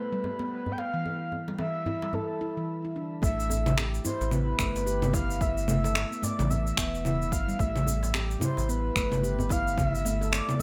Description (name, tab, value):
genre	organic downtempo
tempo	110 BPM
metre	4/4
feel	swing 59% on 16ths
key	A minor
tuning	A4 = 438 Hz
part	breathy flute-like synth lead	melody	0.0-10.6 s	A4 to G5	-35 LUFS	equal	analog chorus, delay, shimmer reverb
part	handpan	arpeggios	0.0-10.6 s	E3 to A4	-36 LUFS	equal	delay, shimmer reverb
part	djembe	percussion	0.2-10.6 s	none	-40 LUFS	equal	none
part	round analog bass	bass	3.2-10.4 s	E1 to A1	-33 LUFS	equal	sidechain pumping
part	electronic kick drum	drums	3.2-9.9 s	none	-33 LUFS	equal	none
part	electronic shaker, congas and finger snaps	drums	3.2-10.6 s	none	-32 LUFS	equal	gated reverb
room	moderate plate reverb, RT60 1.1 s, digital ambience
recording	bright 1980s-style digital production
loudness	-29 LUFS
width	mono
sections	0.0-3.2 A section; 3.2-10.6 B section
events	break 2.7-3.2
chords	0.0 Asus2 (rootless); 3.2 Asus2